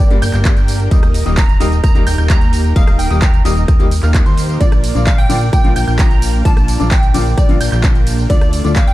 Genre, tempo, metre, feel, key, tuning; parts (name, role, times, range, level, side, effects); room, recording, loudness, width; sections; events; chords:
EDM, festival progressive house; 130 BPM; 4/4; straight; A4 = 438 Hz
glassy wavetable pluck; melody; 0.0-8.9 s; D5 to Bb5; -23 LUFS; right 2 dB; chorus, tape echo
warm grand piano; arpeggios; 0.0-8.8 s; C6 to G6; -27 LUFS; right 2 dB; sidechain pumping, tape echo
dense compressed supersaw; riff; 0.0-8.8 s; A3 to G5; -23 LUFS; equal; sidechain pumping
fat analog bass; bass; 0.0-8.9 s; Eb1 to Eb2; -16 LUFS; equal; tube saturation, sidechain pumping
big-room dance drum kit; drums; 0.0-8.9 s; handclaps, hi-hat, ride cymbal, rim click, tambourine; -24 LUFS; right 1 dB; overdrive
bright grand piano; accompaniment; 0.1-8.7 s; G2 to G4; -23 LUFS; left 6 dB; sidechain pumping
electronic kick drum; drums; 0.5-8.9 s; -12 LUFS; equal; overdrive
little or no reverb; dark, warm production; -10 LUFS; side -16 dB against mid
0.0-8.9 A section
0.0 Gm; 0.9 Eb; 4.6 Bb; 8.3 Dm